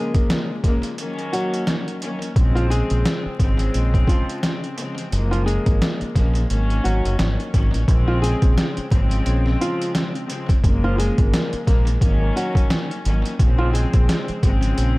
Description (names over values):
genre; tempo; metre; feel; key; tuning
hip hop, boom-bap hip-hop; 87 BPM; 4/4; swing 58% on 16ths; Bb minor; A4 = 440 Hz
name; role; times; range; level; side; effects
nylon-string guitar; melody; 0.0-15.0 s; F3 to Ab4; -28 LUFS; equal; high-pass filter, low-pass filter, analog delay
warm studio string section; accompaniment; 0.0-15.0 s; Db3 to Db4; -26 LUFS; left 1 dB; cassette tape, high-pass filter, low-pass filter, analog delay
trip hop sampler-style drum kit; drums; 0.1-15.0 s; hi-hat, kick drum, snare drum; -20 LUFS; equal; overdrive
deep dub fingered electric bass; bass; 2.4-15.0 s; Gb1 to Bb1; -20 LUFS; equal; none
room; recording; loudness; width
little or no reverb; echo-heavy mix, vinyl crackle; -17 LUFS; side -22 dB against mid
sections
0.0-7.9 A section; 7.9-15.0 B section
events
break 0.0-2.4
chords
0.0 Db6; 1.0 Ab7sus4; 2.4 Bbm9; 5.1 Gbmaj7; 6.5 Ab7sus4; 7.9 Bbm9; 10.6 Gbmaj7; 12.0 Ab7sus4; 13.4 Bbm9